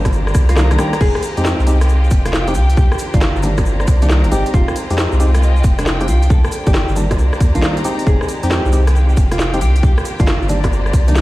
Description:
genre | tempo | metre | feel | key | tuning
UK garage, two-step garage | 136 BPM | 4/4 | swing 66% on 16ths | F dorian | A4 = 440 Hz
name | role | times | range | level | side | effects
warm symphonic violin section | sustained chords | 0.0-11.2 s | Ab3 to G4 | -29 LUFS | equal | sidechain pumping
saturated sub bass | bass | 0.0-11.2 s | F1 to F2 | -14 LUFS | equal | none
dark studio string section | texture | 0.0-11.2 s | Eb3 to Bb5 | -27 LUFS | left 2 dB | sidechain pumping
electronic kick drum | drums | 0.1-11.1 s | none | -15 LUFS | equal | none
garage drum kit | drums | 0.1-11.2 s | bongos, crash cymbal, hi-hat, rim click, snare drum | -22 LUFS | equal | none
tube shaker | percussion | 0.1-11.2 s | none | -36 LUFS | right 3 dB | none
nylon-string guitar | melody | 0.5-11.2 s | D4 to A4 | -25 LUFS | equal | digital delay
percussive organ stab | stabs | 0.6-11.2 s | Eb3 to G4 | -22 LUFS | equal | chorus, cassette tape, digital delay
room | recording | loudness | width
small room reverb | played on a big sound system in a bare room, stone room reverb, vinyl crackle | -12 LUFS | side -18 dB against mid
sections
0.0-11.2 A section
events
drum fill 0.3-1.0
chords
0.0 Cm9; 1.0 Fm9; 2.6 Cm9; 4.5 Fm9; 6.1 Cm9; 8.1 Fm9; 9.6 Cm9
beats
0.13 0.57 | 1.01 1.45 1.89 2.33 | 2.77 3.21 3.66 4.10 | 4.54 4.98 5.42 5.86 | 6.30 6.74 7.18 7.63 | 8.07 8.51 8.95 9.39 | 9.83 10.27 10.71 11.16

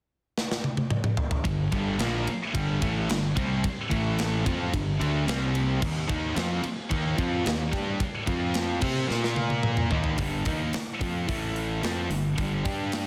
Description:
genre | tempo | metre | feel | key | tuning
hard rock | 110 BPM | 4/4 | straight | G minor | A4 = 441 Hz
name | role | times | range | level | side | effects
tight metal drum kit | drums | 0.4-13.1 s | crash cymbal, hi-hat, kick drum, ride cymbal, snare drum, toms | -32 LUFS | equal | soft clipping on kick
crunchy overdriven guitar | riff | 1.4-10.2 s | G2 to C5 | -35 LUFS | equal | none
heavy high-gain guitar | riff | 1.4-13.1 s | G2 to C5 | -35 LUFS | equal | distortion
overdriven semi-hollow guitar | riff | 1.4-13.1 s | G2 to C5 | -33 LUFS | equal | none
fuzz fingered electric bass | bass | 1.4-13.1 s | G1 to C3 | -35 LUFS | equal | overdrive
room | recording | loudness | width
light reverb, small room ambience | dense, heavily limited modern master | -27 LUFS | mono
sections
0.0-1.5 A section; 1.5-10.2 B section; 10.2-13.1 C section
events
drum fill 0.4-1.5, 9.1-10.2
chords
0.0 N.C.; 1.5 Gm; 3.9 A5; 4.5 G5; 5.3 C5; 5.8 Eb5; 8.3 F5; 8.8 C5; 9.1 Bb5; 9.9 Eb5; 10.2 Gm; 11.3 A5; 11.8 G5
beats
0.36 0.91 | 1.45 2.00 2.54 3.09 | 3.63 4.18 4.72 5.27 | 5.82 6.36 6.91 7.45 | 8.00 8.54 9.09 9.64 | 10.18 10.73 11.28 11.83 | 12.38 12.92

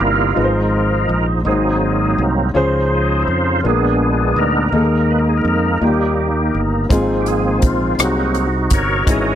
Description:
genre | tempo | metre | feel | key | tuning
slow gospel | 55 BPM (dotted quarters) | 6/8 | straight | Ab major | A4 = 440 Hz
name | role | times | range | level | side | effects
warm grand piano | accompaniment | 0.0-9.4 s | Ab2 to C5 | -19 LUFS | left 2 dB | none
bright tonewheel organ | sustained chords | 0.0-9.4 s | Fb3 to Eb5 | -18 LUFS | right 2 dB | fast rotary speaker, chorus vibrato
modern bright fingered electric bass | bass | 0.0-9.4 s | G1 to F2 | -20 LUFS | right 1 dB | none
swinging big-band drum kit | drums | 6.9-9.2 s | hi-hat, kick drum, rim click | -16 LUFS | equal | none
room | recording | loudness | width
little or no reverb | dry, close 1970s-style studio recording | -14 LUFS | side -10 dB against mid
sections
0.0-9.4 A section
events
tonewheel organ solo 0.0-9.4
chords
0.4 Fm7/Ab; 1.5 Ab7; 2.5 Dbmaj7; 3.6 Bb7b9; 4.7 Ebsus4; 5.8 Eb; 6.9 Ab6; 8.0 Ab7/C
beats
| 0.37 1.46 | 2.55 3.64 | 4.73 5.82 | 6.91 7.99 | 9.08

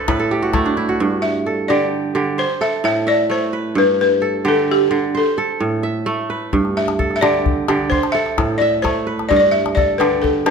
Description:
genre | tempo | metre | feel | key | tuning
west african traditional, West African string and xylophone music | 87 BPM (dotted quarters) | 12/8 | straight | G major | A4 = 440 Hz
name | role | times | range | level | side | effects
kora | arpeggios | 0.0-10.5 s | G2 to E5 | -18 LUFS | right 3 dB | none
calabash | percussion | 0.1-0.7, 6.5-10.5 s | none | -23 LUFS | left 4 dB | none
balafon | melody | 1.2-10.5 s | G4 to E5 | -17 LUFS | left 2 dB | none
room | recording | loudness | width
moderate recital hall reverb, RT60 1.4 s | none | -15 LUFS | side -6 dB against mid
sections
1.0-10.5 A section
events
kora fill 0.0-1.0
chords
0.0 N.C.; 1.0 G5; 2.4 Am; 3.8 G; 5.1 Am; 6.5 G; 7.9 Am; 9.3 G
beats
0.31 | 1.00 1.69 2.38 3.07 | 3.76 4.46 5.15 5.84 | 6.53 7.23 7.92 8.61 | 9.30 10.00

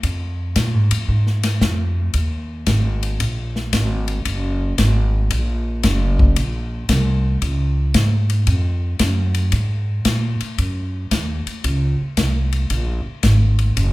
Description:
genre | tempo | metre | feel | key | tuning
jazz, big band swing | 114 BPM | 4/4 | swing 67% on 8ths | Bb minor | A4 = 440 Hz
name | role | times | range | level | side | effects
upright bass | bass | 0.0-13.9 s | Gb1 to Bb2 | -18 LUFS | equal | none
swinging big-band drum kit | drums | 0.0-13.9 s | hi-hat, kick drum, ride cymbal, snare drum | -21 LUFS | left 1 dB | none
room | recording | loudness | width
moderate large studio reverb, RT60 0.8 s | minimal, uncompressed stereo recording | -17 LUFS | side -19 dB against mid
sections
0.0-13.9 A section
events
none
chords
none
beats
| 0.03 0.56 1.09 1.61 | 2.14 2.67 3.20 3.72 | 4.25 4.78 5.31 5.83 | 6.36 6.89 7.42 7.95 | 8.48 9.00 9.53 10.06 | 10.59 11.12 11.65 12.18 | 12.70 13.23 13.76

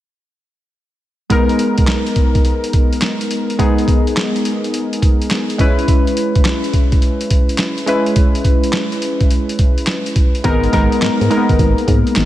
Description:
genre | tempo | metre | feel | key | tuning
R&B, new jack swing | 105 BPM | 4/4 | swing 66% on 16ths | G# minor | A4 = 444 Hz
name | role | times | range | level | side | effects
warm analog keys | accompaniment | 1.3-12.3 s | G#3 to B4 | -17 LUFS | left 1 dB | chorus
boom bap sampler-style drum kit | drums | 1.3-12.3 s | handclaps, hi-hat, kick drum, snare drum | -15 LUFS | equal | none
solid FM bass | bass | 10.4-12.3 s | G#1 to G#2 | -17 LUFS | equal | none
room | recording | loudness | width
digital ambience | none | -13 LUFS | side -14 dB against mid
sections
1.3-10.4 A section; 10.4-12.3 B section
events
none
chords
1.3 G#madd9; 5.6 C#m7; 10.4 G#madd9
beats
| 1.30 1.88 2.45 3.02 | 3.59 4.16 4.73 5.30 | 5.88 6.45 7.02 7.59 | 8.16 8.73 9.30 9.88 | 10.45 11.02 11.59 12.16

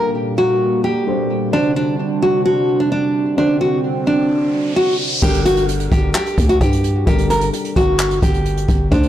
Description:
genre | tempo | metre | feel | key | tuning
hip hop, trap | 130 BPM | 4/4 | half-time | G harmonic minor | A4 = 440 Hz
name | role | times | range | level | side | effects
nylon-string guitar | melody | 0.0-9.1 s | D4 to Bb4 | -17 LUFS | equal | tape echo
dark concert grand piano | accompaniment | 0.0-9.1 s | D3 to C5 | -24 LUFS | left 4 dB | none
hollow soft pad | sustained chords | 0.0-5.2 s | Bb2 to D4 | -22 LUFS | right 4 dB | chorus
riser | sound effects | 4.3-5.2 s | none | -25 LUFS | equal | none
growling 808-style bass | bass | 5.2-9.1 s | G1 to G2 | -19 LUFS | equal | transformer saturation
jazz brush drum kit | drums | 5.2-9.1 s | crash cymbal, handclaps, hi-hat, kick drum | -18 LUFS | equal | none
room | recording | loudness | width
light reverb, small room ambience | blown-out, overdriven recording, overdrive | -14 LUFS | side -12 dB against mid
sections
0.0-5.2 A section; 5.2-9.1 B section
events
riser 4.3-5.2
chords
0.0 Gmadd9; 1.5 D7; 5.2 Gmadd9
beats
0.15 0.61 1.07 | 1.53 1.99 2.46 2.92 | 3.38 3.84 4.30 4.76 | 5.22 5.69 6.15 6.61 | 7.07 7.53 7.99 8.46 | 8.92

